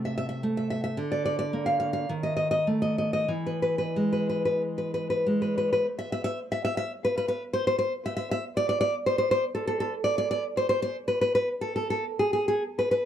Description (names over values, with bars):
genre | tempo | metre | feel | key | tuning
romantic piece for solo classical guitar | 45-62 BPM | 2/4 | rubato | unclear | A4 = 440 Hz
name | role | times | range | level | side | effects
nylon-string guitar | solo | 0.0-13.1 s | C3 to F5 | -25 LUFS | equal | tape echo
room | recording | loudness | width
small room ambience | dry, close 1970s-style studio recording | -25 LUFS | side -10 dB against mid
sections
0.0-5.8 A section; 5.8-13.1 B section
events
none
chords
0.0 Am/C; 1.0 Bb/D; 2.1 N.C.; 3.3 E; 5.8 N.C.